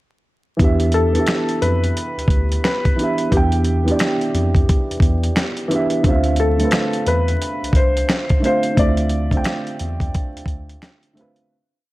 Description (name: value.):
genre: lo-fi hip hop.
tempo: 88 BPM.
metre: 4/4.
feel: swing 62% on 16ths.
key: D dorian.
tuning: A4 = 440 Hz.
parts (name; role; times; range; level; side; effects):
dark upright piano; accompaniment; 0.6-11.5 s; D3 to G5; -21 LUFS; right 2 dB; cassette tape, low-pass filter.
mellow tine electric piano; bass; 0.6-10.8 s; C2 to F2; -20 LUFS; equal; medium stereo tremolo.
dusty soul sampler-style drum kit; drums; 0.6-11.5 s; finger snaps, hi-hat, kick drum, snare drum; -19 LUFS; equal; none.
felt-muted upright piano; melody; 0.9-10.8 s; G4 to D5; -23 LUFS; left 2 dB; low-pass filter.
room: light reverb.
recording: vinyl crackle.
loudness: -16 LUFS.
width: side -18 dB against mid.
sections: 0.6-11.5 A section.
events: fade-out 8.8-11.5.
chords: 0.6 Em7; 6.0 Dm9.